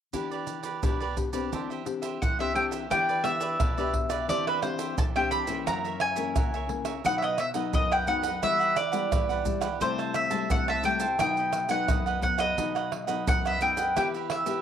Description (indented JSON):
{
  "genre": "samba and choro",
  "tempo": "87 BPM",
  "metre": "4/4",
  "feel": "straight",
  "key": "E minor",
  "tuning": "A4 = 439 Hz",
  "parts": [
    { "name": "cavaquinho", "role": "accompaniment", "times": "0.1-14.6 s", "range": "D4 to A5", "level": "-34 LUFS", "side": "right 8 dB", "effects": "none" },
    { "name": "nylon-string guitar", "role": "accompaniment", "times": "0.1-14.6 s", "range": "F#2 to G4", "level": "-33 LUFS", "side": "left 9 dB", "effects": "none" },
    { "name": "maracas, surdo, pandeiro and tamborim", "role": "percussion", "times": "0.1-14.6 s", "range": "none", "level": "-31 LUFS", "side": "right 2 dB", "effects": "none" },
    { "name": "mandolin", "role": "melody", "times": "2.2-14.6 s", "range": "B4 to B5", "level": "-27 LUFS", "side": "equal", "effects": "none" }
  ],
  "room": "moderate spring reverb, RT60 1.9 s, small room ambience",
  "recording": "home recording on cassette",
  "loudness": "-25 LUFS",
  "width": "side -9 dB against mid",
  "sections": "0.1-2.9 A section; 2.9-14.6 B section",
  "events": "none",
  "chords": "0.1 Em7; 1.5 Cadd9/E; 2.9 Em7; 4.3 Cadd9/E; 5.7 F#7; 7.0 B; 8.4 Emadd9; 9.8 Am7/C; 11.2 B; 14.0 Em",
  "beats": "| 0.14 0.83 1.52 2.21 | 2.91 3.60 4.29 4.98 | 5.67 6.36 7.05 7.74 | 8.43 9.12 9.81 10.50 | 11.20 11.89 12.58 13.27 | 13.96"
}